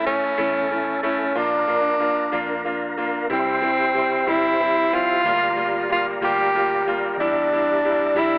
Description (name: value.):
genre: six-eight pop ballad.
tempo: 62 BPM (dotted quarters).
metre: 6/8.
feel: straight.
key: unclear.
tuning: A4 = 442 Hz.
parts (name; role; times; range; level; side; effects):
breathy tenor saxophone; melody; 0.0-8.4 s; C4 to G4; -20 LUFS; equal; digital delay.
mellow tonewheel organ; sustained chords; 0.0-8.4 s; C#4 to C6; -28 LUFS; equal; chorus vibrato, fast rotary speaker.
vintage muted fingered electric bass; bass; 0.0-8.4 s; G1 to F2; -44 LUFS; equal; none.
clear concert grand piano; accompaniment; 0.1-8.4 s; G3 to F4; -24 LUFS; equal; none.
room: moderate plate reverb, RT60 3.2 s.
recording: telephone sound.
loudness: -18 LUFS.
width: side -25 dB against mid.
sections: 0.0-3.3 A section; 3.3-8.4 B section.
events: none.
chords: 0.0 A; 1.4 Bb; 3.3 C; 5.2 Gm7/D; 7.2 Em7b5.